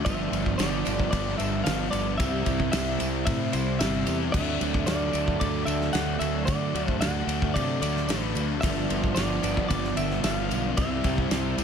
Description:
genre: rock, shoegaze and dream pop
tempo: 112 BPM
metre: 4/4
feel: straight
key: unclear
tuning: A4 = 441 Hz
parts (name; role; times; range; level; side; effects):
- direct-recorded clean electric guitar; melody; 0.0-11.6 s; B4 to F#5; -32 LUFS; equal; analog delay
- twelve-string electric guitar; arpeggios; 0.0-11.6 s; F3 to E4; -36 LUFS; right 10 dB; analog chorus, analog delay
- overdriven electric guitar; riff; 0.0-11.6 s; G2 to E4; -31 LUFS; right 10 dB; reverse reverb
- overdriven semi-hollow guitar; riff; 0.0-11.6 s; G2 to E4; -30 LUFS; left 11 dB; lush chorus
- fuzz fingered electric bass; bass; 0.1-11.6 s; G1 to D3; -31 LUFS; equal; overdrive
- loose indie drum kit; drums; 0.1-11.6 s; crash cymbal, kick drum, ride cymbal, snare drum; -30 LUFS; left 1 dB; none
- tambourine; percussion; 0.1-11.6 s; none; -43 LUFS; right 16 dB; none
room: light reverb, small room reverb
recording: none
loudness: -24 LUFS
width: side -7 dB against mid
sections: 0.0-11.6 A section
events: none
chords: 0.1 G7; 2.2 C; 4.3 D; 8.6 G7; 10.8 C

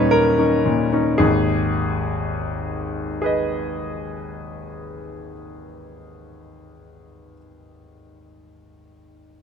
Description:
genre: classical, romantic character piece for solo piano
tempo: 59 BPM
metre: 3/4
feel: rubato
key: G# minor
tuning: A4 = 439 Hz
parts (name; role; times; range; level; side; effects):
- clear grand piano; solo; 0.0-9.4 s; G#1 to D#5; -19 LUFS; left 1 dB; none
room: light reverb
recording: close, detailed microphones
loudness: -18 LUFS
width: side -7 dB against mid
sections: 0.0-1.2 A section; 1.2-7.3 B section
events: slowing down 0.0-1.2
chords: 0.0 D#7; 1.2 G#m

